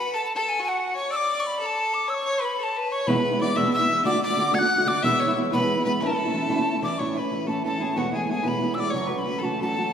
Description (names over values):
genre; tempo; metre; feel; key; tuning
celtic folk, Celtic jig; 123 BPM (dotted quarters); 6/8; straight; A major; A4 = 440 Hz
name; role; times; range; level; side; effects
mellow hollow wooden whistle; melody; 0.0-9.9 s; F#5 to G#6; -26 LUFS; left 1 dB; none
clear fiddle; second line; 0.0-9.9 s; F#4 to F#5; -28 LUFS; left 2 dB; none
fingerpicked steel-string acoustic guitar; accompaniment; 3.1-9.9 s; E2 to F#4; -24 LUFS; right 1 dB; none
hand-pumped harmonium; drone; 7.0-9.9 s; A2 to E3; -34 LUFS; right 2 dB; none
room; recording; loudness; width
wet concert hall reverb, RT60 1.9 s; recorded in a church or concert hall; -22 LUFS; side -8 dB against mid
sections
0.0-7.0 A section; 7.0-9.9 B section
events
none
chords
0.0 N.C.; 2.1 E; 4.0 D; 5.0 E; 6.0 A; 8.0 E; 8.9 F#m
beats
| 0.13 0.62 | 1.11 1.60 | 2.09 2.58 | 3.07 3.56 | 4.05 4.54 | 5.02 5.51 | 6.00 6.49 | 6.98 7.47 | 7.95 8.44 | 8.93 9.42 | 9.91